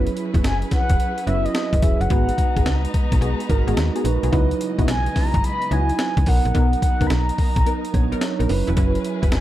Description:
R&B, new jack swing; 108 BPM; 4/4; swing 66% on 16ths; C# dorian; A4 = 439 Hz
mellow tine electric piano; accompaniment; 0.0-9.4 s; F#3 to C#5; -26 LUFS; right 7 dB; phaser
warm studio string section; sustained chords; 0.0-9.4 s; C#3 to A#5; -32 LUFS; left 1 dB
funky polysynth comp; stabs; 0.0-9.3 s; B3 to B4; -28 LUFS; left 2 dB; chorus, tape echo
slap-like FM bass; bass; 0.0-9.4 s; E1 to D#2; -21 LUFS; equal
breakbeat sampler-style drum kit; drums; 0.1-9.4 s; hi-hat, kick drum, snare drum; -21 LUFS; equal
mellow horn-like synth lead; melody; 0.5-9.4 s; D#5 to B5; -26 LUFS; left 1 dB; chorus, tape echo
digital ambience; dark, warm production; -18 LUFS; side -14 dB against mid
0.0-9.4 A section
0.0 F#7sus4; 2.1 G#m7; 4.3 C#m11; 6.3 Bmaj7; 8.5 F#7sus4

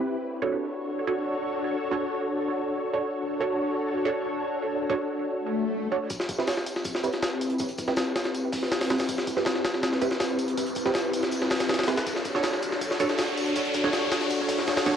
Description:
drum and bass, jungle; 161 BPM; 4/4; straight; A4 = 440 Hz
soft string machine; sustained chords; 0.0-15.0 s; C4 to C#5; -28 LUFS; left 1 dB; ensemble chorus, vintage 12-bit sampler grit
filtered dub chord stab; stabs; 0.4-14.9 s; C4 to C#5; -30 LUFS; right 5 dB; phaser, wide subtle chorus, dub echo
swell and riser; sound effects; 5.5-15.0 s; -34 LUFS; left 2 dB
jungle sampler-style drum kit; drums; 6.1-15.0 s; hi-hat, kick drum, snare drum; -28 LUFS; left 1 dB; high-pass filter on hats, cassette tape, high-pass filter on kick, high-pass filter on snare, high-pass filter on room
modern studio drum kit; drums; 6.1-14.9 s; hi-hat, snare drum, tambourine; -39 LUFS; equal; high-pass filter on hats, cassette tape, high-pass filter on snare, high-pass filter on perc, high-pass filter on room
moderate spring reverb, RT60 1.3 s, studio reverb; home recording on cassette; -25 LUFS; side -8 dB against mid
0.0-6.1 A section; 6.1-15.0 B section
swell 5.5-6.1; build-up 6.1-15.0; riser 6.1-15.0; filter sweep on string machine 6.1-15.0; filter sweep on synth stab 6.1-15.0
0.1 Dmaj7; 6.1 Am7 (rootless); 12.1 Dmaj7

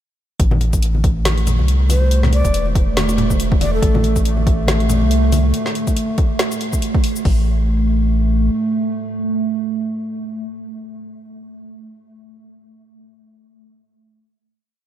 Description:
deep dubstep; 140 BPM; 4/4; swing 57% on 16ths, half-time; A minor; A4 = 441 Hz
dark analog pad; sustained chords; 0.4-11.3 s; A3; -22 LUFS; right 2 dB; chorus, vintage 12-bit sampler grit
soft dub sub bass; bass; 0.4-8.5 s; E1 to C2; -16 LUFS; equal
deep house drum kit; drums; 0.4-7.4 s; hi-hat, kick drum; -17 LUFS; equal
deep house drum kit; drums; 0.4-7.2 s; hi-hat, shaker, snare drum; -25 LUFS; left 1 dB
congas; percussion; 0.5-5.4 s; -25 LUFS; left 2 dB; dub echo
breathy bright long shakuhachi; melody; 1.9-4.2 s; A4 to D5; -27 LUFS; left 2 dB; dub echo
light reverb; -15 LUFS; side -11 dB against mid
0.4-7.3 drop; 7.3-10.7 final note
drop 0.4-7.3
0.4 Am; 7.3 N.C.

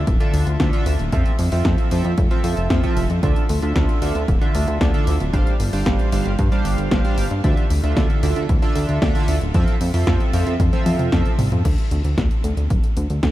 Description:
italo disco; 114 BPM; 4/4; straight; A4 = 440 Hz
chorused synth bass; bass; 0.0-13.3 s; D1 to G2; -21 LUFS; equal
electronic kick drum; drums; 0.1-13.3 s; -20 LUFS; equal; studio reverb
house drum kit; drums; 0.1-13.3 s; crash cymbal, hi-hat, snare drum, toms; -27 LUFS; equal; studio reverb
chorused polysynth; stabs; 0.2-11.3 s; D3 to F5; -24 LUFS; right 2 dB; analog delay
light reverb; -16 LUFS; side -15 dB against mid
0.0-11.7 A section; 11.7-13.3 B section
drum fill 10.6-11.7
0.0 Dmadd9; 1.1 Fmaj7; 3.2 Dmadd9; 5.3 G7sus4; 7.4 Dmadd9; 9.5 Fmaj7; 11.7 N.C.

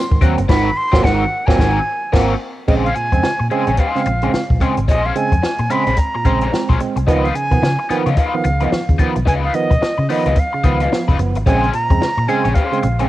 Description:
funk; 109 BPM; 4/4; swing 60% on 16ths; A4 = 440 Hz
breathy bright concert flute; melody; 0.0-13.1 s; Eb5 to C6; -21 LUFS; right 1 dB; cassette tape
barky tine electric piano; stabs; 0.1-13.1 s; Ab2 to C4; -20 LUFS; right 5 dB; overdrive, cassette tape
compact cocktail drum kit; drums; 0.1-13.1 s; crash cymbal, hi-hat, kick drum, snare drum; -17 LUFS; equal; cassette tape
crunchy overdriven guitar; accompaniment; 0.2-13.1 s; C4 to Db5; -23 LUFS; left 6 dB; wah, cassette tape
vintage muted fingered electric bass; bass; 0.2-13.1 s; F1 to Db3; -19 LUFS; equal
light reverb; home recording on cassette; -14 LUFS; side -15 dB against mid
0.0-2.7 A section; 2.7-13.1 B section
band accent 0.5-2.7
0.0 Ab9; 2.7 Bbm9; 7.1 Db9; 11.5 Bbm9

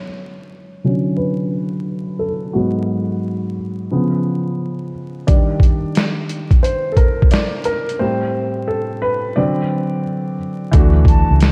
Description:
lo-fi hip hop; 88 BPM; 4/4; swing 66% on 16ths; D major; A4 = 441 Hz
felt-muted upright piano; accompaniment; 0.0-11.5 s; G#2 to D5; -21 LUFS; equal; low-pass filter
boom bap sampler-style drum kit; drums; 5.3-11.5 s; hi-hat, kick drum, snare drum; -16 LUFS; equal
vintage muted fingered electric bass; bass; 10.7-11.5 s; C#2 to D2; -15 LUFS; equal
breathy hollow jazz flute; melody; 11.1-11.4 s; A5; -24 LUFS; equal; low-pass filter
moderate plate reverb, RT60 2.7 s; dreamy mix soaked in reverb, vinyl crackle; -18 LUFS; mono
0.0-10.7 A section
felt piano solo 0.0-10.7; filter sweep on felt piano 0.0-10.7; break 8.0-10.7
0.0 Dmaj7; 2.6 G#m7; 3.9 C#7; 5.3 Ebmaj7; 8.0 Am7; 9.4 D7; 10.7 Dmaj9

